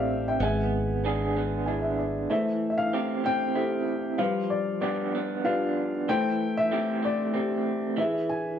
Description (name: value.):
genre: acoustic folk-pop ballad.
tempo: 95 BPM.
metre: 3/4.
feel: straight.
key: unclear.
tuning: A4 = 440 Hz.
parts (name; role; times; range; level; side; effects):
dark upright piano; melody; 0.0-8.6 s; E3 to G#5; -27 LUFS; left 2 dB; none.
electric guitar through a small old amp; arpeggios; 0.0-8.6 s; E3 to G#4; -30 LUFS; right 4 dB; tremolo.
fingered electric bass; bass; 0.0-2.3 s; G#1 to A1; -30 LUFS; equal; none.
room: moderate stone room reverb, RT60 0.9 s.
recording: band playing live in one room.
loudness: -25 LUFS.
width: side -9 dB against mid.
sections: 0.0-2.3 A section; 2.3-8.6 A section.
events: upright piano fill 1.4-2.3.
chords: 0.4 E7/G#; 2.3 Am7; 4.2 G7; 6.1 Am7; 8.0 E.